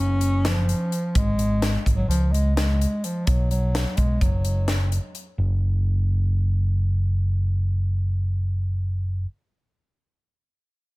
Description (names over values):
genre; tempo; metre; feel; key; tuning
progressive instrumental, band music in an uneven meter; 255 BPM (eighths); 9/8; straight; unclear; A4 = 440 Hz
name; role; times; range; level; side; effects
mellow bass clarinet; melody; 0.0-4.9 s; E#3 to C#4; -26 LUFS; equal; digital delay
picked electric bass; bass; 0.0-9.2 s; F#1 to C#2; -21 LUFS; equal; none
crisp fusion drum kit; drums; 0.2-5.3 s; hi-hat, kick drum, snare drum; -25 LUFS; equal; none
room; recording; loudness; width
light reverb; none; -20 LUFS; side -22 dB against mid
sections
0.0-5.4 A section; 5.4-9.6 B section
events
none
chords
0.0 F#5; 1.1 N.C.; 2.1 C#5; 3.3 B5; 4.2 N.C.